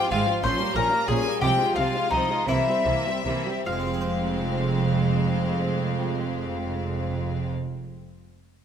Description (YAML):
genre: classical, baroque-style concerto movement with solo episodes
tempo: 49-64 BPM (dotted quarters)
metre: 6/8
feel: straight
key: F minor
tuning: A4 = 439 Hz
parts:
  - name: clear studio violin section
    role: melody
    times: 0.0-7.5 s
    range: Eb5 to C6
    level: -32 LUFS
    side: left 5 dB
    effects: none
  - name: mandolin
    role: melody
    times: 0.0-7.5 s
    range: Eb4 to F5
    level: -25 LUFS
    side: left 2 dB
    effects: none
  - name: rich chamber violin section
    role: second line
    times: 0.0-7.5 s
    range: Bb3 to F4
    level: -32 LUFS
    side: left 2 dB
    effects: none
  - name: harpsichord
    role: accompaniment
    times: 0.0-7.8 s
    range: Ab2 to C5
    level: -34 LUFS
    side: left 1 dB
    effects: none
  - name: rich chamber viola section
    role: accompaniment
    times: 0.0-7.5 s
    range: E3 to Ab3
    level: -32 LUFS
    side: right 3 dB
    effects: none
  - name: rich chamber double bass section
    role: bass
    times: 0.1-7.5 s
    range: F1 to C2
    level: -28 LUFS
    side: right 3 dB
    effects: none
  - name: rich symphonic cello section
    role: bass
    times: 0.1-7.5 s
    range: F2 to C3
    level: -31 LUFS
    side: right 2 dB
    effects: none
room: light reverb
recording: close, detailed microphones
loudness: -22 LUFS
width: side -8 dB against mid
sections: 0.0-3.7 A section; 3.7-8.5 B section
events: slowing down 0.0-3.7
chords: 0.4 Gm7b5/Bb; 1.4 Fm/C; 2.5 C7; 3.7 Fm